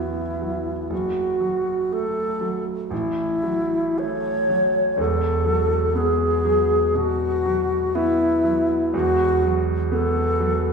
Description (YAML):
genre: classical, impressionist duo for alto flute and grand piano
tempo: 60 BPM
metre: 4/4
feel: rubato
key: unclear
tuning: A4 = 440 Hz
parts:
  - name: alto flute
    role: melody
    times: 0.0-10.7 s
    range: E4 to C#5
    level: -21 LUFS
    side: equal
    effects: none
  - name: clear grand piano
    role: accompaniment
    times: 0.0-10.7 s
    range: E1 to B3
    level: -24 LUFS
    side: right 2 dB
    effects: none
room: wet scoring stage reverb, RT60 1.4 s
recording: heard from further back in the room, small room ambience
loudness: -19 LUFS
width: side -5 dB against mid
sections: 0.0-10.7 A section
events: none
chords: 0.0 Asus2; 0.9 F#m; 2.9 A6; 5.0 B5/E